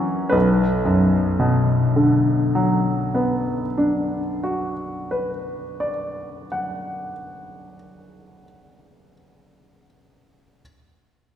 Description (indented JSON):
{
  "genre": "classical, romantic nocturne for solo piano",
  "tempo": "30 BPM (dotted quarters)",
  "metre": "12/8",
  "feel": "rubato",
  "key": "B minor",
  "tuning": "A4 = 440 Hz",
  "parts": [
    { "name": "clear baby grand piano", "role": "solo", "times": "0.0-10.6 s", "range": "B1 to F#5", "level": "-19 LUFS", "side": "equal", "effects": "none" }
  ],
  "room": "wet concert hall reverb, RT60 1.9 s",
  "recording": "recorded in a church or concert hall",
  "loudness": "-19 LUFS",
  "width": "side -10 dB against mid",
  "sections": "0.3-8.4 A section",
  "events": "none",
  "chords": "0.3 Bm"
}